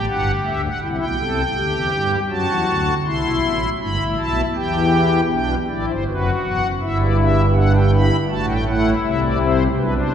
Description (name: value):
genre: classical, baroque-style 3-part fugue for pipe organ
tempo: 80 BPM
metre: 4/4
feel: straight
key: G major from 5.3 s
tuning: A4 = 440 Hz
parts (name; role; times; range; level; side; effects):
- pipe organ, strings celeste; solo; 0.0-10.1 s; E1 to C6; -16 LUFS; equal; none
room: wet church reverb, RT60 3.3 s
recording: heard from further back in the room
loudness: -16 LUFS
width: side -8 dB against mid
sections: 0.0-5.3 A section; 5.3-10.1 B section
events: none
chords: 0.0 Em/G; 0.8 C; 2.3 F#m7b5; 3.8 Em/G; 5.3 G; 6.8 Em/G; 8.3 Am